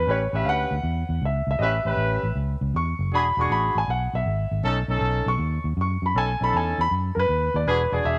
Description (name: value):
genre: blues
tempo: 158 BPM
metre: 4/4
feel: swing 67% on 8ths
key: unclear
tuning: A4 = 438 Hz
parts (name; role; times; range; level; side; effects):
- warm upright piano; accompaniment; 0.0-8.2 s; A#4 to C#6; -27 LUFS; equal; none
- vintage muted fingered electric bass; bass; 0.0-8.2 s; E1 to F#2; -28 LUFS; equal; none
- brilliant horn section; stabs; 0.1-8.2 s; C#4 to B4; -30 LUFS; equal; none
room: moderate echo chamber reverb, RT60 1.6 s, small room ambience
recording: none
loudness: -24 LUFS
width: mono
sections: 0.0-8.2 A section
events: none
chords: 0.0 A9; 3.1 E9; 4.6 B9; 7.7 E9